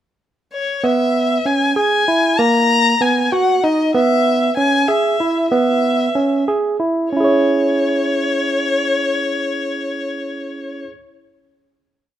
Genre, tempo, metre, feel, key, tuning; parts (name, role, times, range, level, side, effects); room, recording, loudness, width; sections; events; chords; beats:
contemporary instrumental, contemporary; 189 BPM (eighths); 5/8; uneven beats; C# dorian; A4 = 441 Hz
warm violin; melody; 0.5-10.8 s; C#5 to A#5; -18 LUFS; left 3 dB
barky tine electric piano; arpeggios; 0.8-11.0 s; A#3 to C#5; -17 LUFS; right 2 dB; overdrive
light reverb; close, detailed microphones; -14 LUFS; side -11 dB against mid
0.0-0.8 pickup bar; 0.8-7.1 A section; 7.1-10.4 final chord
slowing down 3.9-7.1
0.0 N.C.; 0.8 C#m7; 2.4 Bmaj7; 3.9 C#m7; 7.1 C#m
0.21 0.52 | 0.83 1.14 1.45 1.76 2.08 | 2.39 2.70 3.01 3.32 3.63 | 3.94 4.26 4.57 4.88 5.20 | 5.51 5.83 6.15 6.47 6.80 | 7.13 7.46 7.78 8.11 8.44 | 8.77 9.10 9.43 9.76 10.09